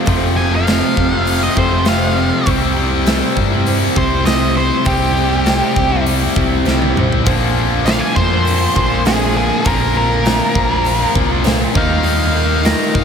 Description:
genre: classic rock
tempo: 100 BPM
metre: 4/4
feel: straight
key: unclear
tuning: A4 = 440 Hz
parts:
  - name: picked steel-string acoustic guitar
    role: accompaniment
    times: 0.0-13.0 s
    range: F2 to G4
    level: -24 LUFS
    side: right 6 dB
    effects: slapback echo
  - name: distorted electric guitar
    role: riff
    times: 0.0-13.0 s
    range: F2 to E4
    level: -22 LUFS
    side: right 11 dB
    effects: distortion, slapback echo
  - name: tight distorted guitar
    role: riff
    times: 0.0-13.0 s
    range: F2 to Eb4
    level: -19 LUFS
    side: left 10 dB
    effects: distortion, slapback echo
  - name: picked electric bass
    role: bass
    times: 0.1-13.0 s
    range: F1 to G2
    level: -19 LUFS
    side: equal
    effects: none
  - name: big rock drum kit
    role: drums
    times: 0.1-13.0 s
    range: hi-hat, kick drum, snare drum, toms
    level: -18 LUFS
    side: equal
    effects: none
  - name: octave-fuzz lead guitar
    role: melody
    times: 0.4-13.0 s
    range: G4 to Bb5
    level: -19 LUFS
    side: equal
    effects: distortion, slapback echo
room: moderate lush hall reverb, RT60 2.5 s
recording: big arena sound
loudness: -12 LUFS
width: side -7 dB against mid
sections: 0.0-13.0 A section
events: lead electric guitar solo 0.0-13.0; drum fill 6.7-7.3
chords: 0.0 F; 2.5 C; 7.3 Bbadd9; 11.8 Ebadd9

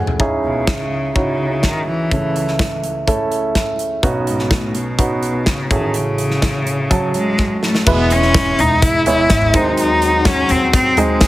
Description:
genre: piano-driven pop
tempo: 125 BPM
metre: 4/4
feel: straight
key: unclear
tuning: A4 = 440 Hz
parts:
  - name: warm grand piano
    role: accompaniment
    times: 0.0-11.3 s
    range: A1 to A5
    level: -19 LUFS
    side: right 2 dB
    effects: none
  - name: modern studio drum kit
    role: drums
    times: 0.1-11.3 s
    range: crash cymbal, hi-hat, kick drum, snare drum, toms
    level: -18 LUFS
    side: equal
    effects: none
  - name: rich cello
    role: melody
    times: 0.4-11.3 s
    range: G#2 to E4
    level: -18 LUFS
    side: left 1 dB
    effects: none
  - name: warm French horn section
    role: second line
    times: 7.9-11.3 s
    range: E3 to F#4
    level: -24 LUFS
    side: left 5 dB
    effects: none
  - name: upright bass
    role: bass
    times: 7.9-11.3 s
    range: E1 to D#2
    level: -21 LUFS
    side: equal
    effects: none
room: light reverb, studio reverb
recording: heavily compressed radio sound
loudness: -14 LUFS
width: side -16 dB against mid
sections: 0.0-7.9 A section; 7.9-11.3 B section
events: grand piano fill 0.0; drum fill 0.0, 7.4-7.9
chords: 0.2 C#madd9; 2.1 A/C#; 4.0 Badd9; 5.7 F#madd9/A; 7.9 E; 9.5 G#/D#

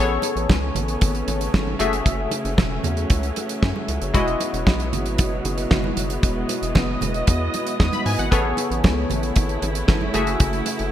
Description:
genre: early-eighties boogie funk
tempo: 115 BPM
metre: 4/4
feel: straight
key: E major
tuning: A4 = 440 Hz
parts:
  - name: funky polysynth comp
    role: accompaniment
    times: 0.0-10.9 s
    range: G#3 to D#6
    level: -25 LUFS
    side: left 2 dB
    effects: chorus
  - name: warm studio string section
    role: sustained chords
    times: 0.0-10.9 s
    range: B2 to D#5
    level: -29 LUFS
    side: right 2 dB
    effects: none
  - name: rubbery square bass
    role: bass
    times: 0.0-10.9 s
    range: E1 to G#2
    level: -26 LUFS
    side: equal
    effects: none
  - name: damped 70s drum kit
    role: drums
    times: 0.2-10.9 s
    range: hi-hat, kick drum, snare drum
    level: -21 LUFS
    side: equal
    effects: none
  - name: congas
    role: percussion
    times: 0.2-10.8 s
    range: none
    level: -32 LUFS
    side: right 6 dB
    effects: none
room: light reverb, studio reverb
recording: bright 1980s-style digital production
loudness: -19 LUFS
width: side -11 dB against mid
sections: 0.0-10.9 A section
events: none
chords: 0.0 Amaj9; 1.8 F#m9; 4.1 Emaj9; 8.3 Amaj9; 10.1 F#m9

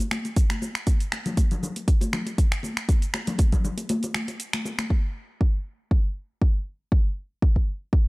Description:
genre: house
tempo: 119 BPM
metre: 4/4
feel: swing 54% on 16ths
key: none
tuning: none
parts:
  - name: house drum kit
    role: drums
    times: 0.0-4.9 s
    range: cabasa, finger snaps, hi-hat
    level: -30 LUFS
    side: equal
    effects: small room ambience
  - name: congas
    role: percussion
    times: 0.0-4.9 s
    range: none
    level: -30 LUFS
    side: left 2 dB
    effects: none
  - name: electronic kick drum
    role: drums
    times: 0.4-8.0 s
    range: none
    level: -20 LUFS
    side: equal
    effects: small room ambience
room: little or no reverb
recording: dry, gritty hardware recording, cassette tape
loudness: -22 LUFS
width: side -25 dB against mid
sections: 0.0-4.9 A section; 4.9-8.1 B section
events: break 3.9-4.9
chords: none

